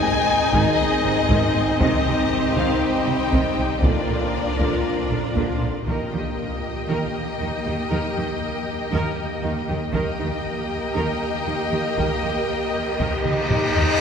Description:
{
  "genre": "cinematic, epic orchestral film score",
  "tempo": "118 BPM",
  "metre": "4/4",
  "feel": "straight",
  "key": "Eb major from 5.9 s",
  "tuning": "A4 = 441 Hz",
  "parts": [
    { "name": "warm symphonic violin section", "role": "melody", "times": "0.0-14.0 s", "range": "D5 to Ab5", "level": "-28 LUFS", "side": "left 4 dB", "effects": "none" },
    { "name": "clear symphonic violin section", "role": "second line", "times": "0.0-14.0 s", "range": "Eb4 to Eb5", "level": "-30 LUFS", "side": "left 2 dB", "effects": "none" },
    { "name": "rich symphonic viola section", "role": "accompaniment", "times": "0.0-13.8 s", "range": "C3 to Bb4", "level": "-30 LUFS", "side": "right 1 dB", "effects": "none" },
    { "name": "clear trombone section", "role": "sustained chords", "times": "0.0-5.6 s", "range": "Bb2 to G3", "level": "-32 LUFS", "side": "right 2 dB", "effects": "none" },
    { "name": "rich symphonic string section", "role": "sustained chords", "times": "0.0-14.0 s", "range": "Bb3 to Eb5", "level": "-28 LUFS", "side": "equal", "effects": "none" },
    { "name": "warm French horn section", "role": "sustained chords", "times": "0.0-13.7 s", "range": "Bb3 to G4", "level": "-29 LUFS", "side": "left 2 dB", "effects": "none" },
    { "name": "rich symphonic cello section", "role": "bass", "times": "0.0-13.8 s", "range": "Ab2 to Eb3", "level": "-29 LUFS", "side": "right 2 dB", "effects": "none" },
    { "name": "warm symphonic double bass section", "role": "bass", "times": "0.0-13.8 s", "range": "Ab1 to Eb2", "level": "-30 LUFS", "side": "right 2 dB", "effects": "none" },
    { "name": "taiko ensemble", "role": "drums", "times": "0.5-6.8, 9.9-14.0 s", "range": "none", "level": "-26 LUFS", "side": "equal", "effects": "none" },
    { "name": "cymbal swell", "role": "sound effects", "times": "13.2-14.0 s", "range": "none", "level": "-30 LUFS", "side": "equal", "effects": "none" },
    { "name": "concert flute", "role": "second line", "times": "13.2-14.0 s", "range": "G4", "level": "-27 LUFS", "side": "left 2 dB", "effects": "none" },
    { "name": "bright trumpet section", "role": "stabs", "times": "13.2-14.0 s", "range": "Eb4", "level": "-26 LUFS", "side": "right 1 dB", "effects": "none" }
  ],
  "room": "wet cathedral reverb, RT60 7.0 s",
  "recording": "recorded in a church or concert hall",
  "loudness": "-20 LUFS",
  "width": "side -7 dB against mid",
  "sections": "0.0-5.9 A section; 5.9-14.0 B section",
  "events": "cymbal swell 13.2-14.0; drum fill 13.2-14.0",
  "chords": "0.0 Ab; 1.8 Cm; 3.8 Bb; 5.9 Eb",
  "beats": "0.28 0.79 1.30 | 1.81 2.31 2.82 3.33 | 3.84 4.35 4.86 5.37 | 5.87 6.38 6.89 7.40 | 7.91 8.42 8.92 9.43 | 9.94 10.45 10.96 11.47 | 11.97 12.48 12.99 13.50 | 14.01"
}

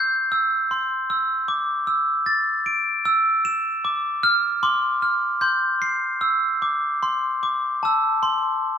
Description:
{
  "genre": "children's music, lullaby",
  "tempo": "76 BPM",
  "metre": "4/4",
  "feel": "rubato",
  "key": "unclear",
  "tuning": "A4 = 440 Hz",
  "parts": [
    { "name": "glockenspiel with hard plastic mallets", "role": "solo", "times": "0.0-8.8 s", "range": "A5 to E7", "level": "-19 LUFS", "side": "equal", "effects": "none" }
  ],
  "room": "moderate concert hall reverb, RT60 1.8 s",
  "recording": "minimal, uncompressed stereo recording",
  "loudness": "-19 LUFS",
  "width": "side -7 dB against mid",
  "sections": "0.0-8.8 A section",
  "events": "none",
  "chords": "0.0 C; 1.5 Dmadd9; 4.6 Csus4; 6.2 Cadd9; 7.8 F (rootless)",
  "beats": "0.71 | 1.49 2.27 3.05 3.84 | 4.63 5.42 6.22 7.03 | 7.84 8.64"
}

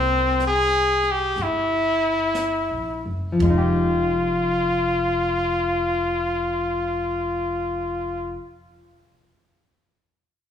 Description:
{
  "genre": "jazz ballad",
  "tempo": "56-65 BPM",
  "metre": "4/4",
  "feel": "swing 69% on 8ths",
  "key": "F minor",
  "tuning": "A4 = 435 Hz",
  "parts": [
    { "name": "brilliant trumpet", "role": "melody", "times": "0.0-8.4 s", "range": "C4 to Ab4", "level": "-21 LUFS", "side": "left 1 dB", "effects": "none" },
    { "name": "hollow-body jazz guitar", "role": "accompaniment", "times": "0.0-8.6 s", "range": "F3 to G4", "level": "-24 LUFS", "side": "left 1 dB", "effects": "none" },
    { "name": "upright bass", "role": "bass", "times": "0.0-8.3 s", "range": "F1 to C2", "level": "-30 LUFS", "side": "equal", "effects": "none" },
    { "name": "jazz brush drum kit", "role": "drums", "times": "0.4-4.3 s", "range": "brushed snare drum, hi-hat, kick drum, snare drum, toms", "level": "-29 LUFS", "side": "right 2 dB", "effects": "none" }
  ],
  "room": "wet recital hall reverb, RT60 1.7 s",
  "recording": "recorded in a church or concert hall, small room ambience",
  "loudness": "-20 LUFS",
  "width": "side -8 dB against mid",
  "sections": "0.0-3.4 A section; 3.4-7.7 B section",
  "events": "slowing down 0.0-3.4",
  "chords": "0.0 C7; 3.4 Fm9",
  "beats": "0.42 1.36 2.36 | 3.40 4.47 5.54 6.62"
}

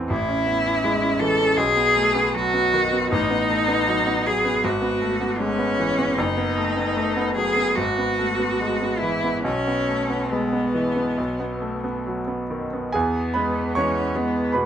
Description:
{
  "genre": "classical, romantic duo for cello and grand piano",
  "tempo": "66-83 BPM",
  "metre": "4/4",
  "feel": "rubato",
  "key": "E major",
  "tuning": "A4 = 440 Hz",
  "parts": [
    { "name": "clear concert grand piano", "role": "accompaniment", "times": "0.0-14.7 s", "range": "F#1 to C#6", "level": "-23 LUFS", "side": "right 1 dB", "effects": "none" },
    { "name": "clear cello", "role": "melody", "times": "0.1-14.7 s", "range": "G#3 to A4", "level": "-22 LUFS", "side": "left 1 dB", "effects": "none" }
  ],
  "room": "moderate studio ambience, RT60 0.5 s",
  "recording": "minimal, uncompressed stereo recording",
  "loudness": "-20 LUFS",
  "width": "side -9 dB against mid",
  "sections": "0.0-12.9 A section; 12.9-14.7 B section",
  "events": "none",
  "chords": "0.1 Amaj7; 1.6 B; 3.1 B7/A; 4.6 E/G#; 6.2 B7/F#; 7.8 E/G#; 9.4 E/B; 11.2 B; 12.9 E",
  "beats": "| 0.10 0.83 1.57 2.35 | 3.12 3.87 4.64 5.40 | 6.18 6.96 7.76 8.60 | 9.45 10.31 11.18 12.06 | 12.95 13.77 14.55"
}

